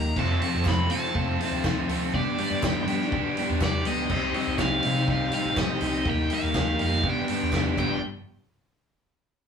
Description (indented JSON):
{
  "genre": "indie rock",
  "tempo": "122 BPM",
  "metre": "4/4",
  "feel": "straight",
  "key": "G mixolydian",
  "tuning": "A4 = 439 Hz",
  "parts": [
    { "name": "cranked stack guitar", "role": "melody", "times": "0.0-8.0 s", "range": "D5 to B5", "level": "-30 LUFS", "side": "equal", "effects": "overdrive" },
    { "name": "mellow tonewheel organ", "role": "sustained chords", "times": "0.0-8.0 s", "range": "B3 to A5", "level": "-37 LUFS", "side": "equal", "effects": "chorus vibrato, fast rotary speaker" },
    { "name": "overdriven electric guitar", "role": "riff", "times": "0.0-8.0 s", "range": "F2 to Eb4", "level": "-30 LUFS", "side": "left 6 dB", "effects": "none" },
    { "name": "growling fingered electric bass", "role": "bass", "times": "0.0-8.0 s", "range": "G1 to G3", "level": "-30 LUFS", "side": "equal", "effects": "overdrive" },
    { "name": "biting overdriven guitar", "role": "riff", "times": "0.2-8.0 s", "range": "A3 to G4", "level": "-30 LUFS", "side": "right 5 dB", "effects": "none" },
    { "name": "vintage drum kit", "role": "drums", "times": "0.2-7.9 s", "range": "crash cymbal, hi-hat, kick drum, snare drum", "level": "-30 LUFS", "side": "equal", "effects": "none" },
    { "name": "group handclap", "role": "percussion", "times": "0.6-8.0 s", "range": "none", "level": "-41 LUFS", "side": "right 5 dB", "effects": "none" }
  ],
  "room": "moderate studio reverb, RT60 0.6 s",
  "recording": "band playing live in one room, small room reverb",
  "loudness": "-23 LUFS",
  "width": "side -7 dB against mid",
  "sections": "0.0-8.0 A section; 8.0-9.5 B section",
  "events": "drum fill 7.8",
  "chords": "0.2 F; 2.1 G; 4.1 Cm; 6.1 Eb; 7.0 G; 8.0 N.C.",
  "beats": "| 0.16 0.66 1.15 1.64 | 2.13 2.62 3.12 3.61 | 4.10 4.59 5.08 5.57 | 6.06 6.55 7.04 7.53"
}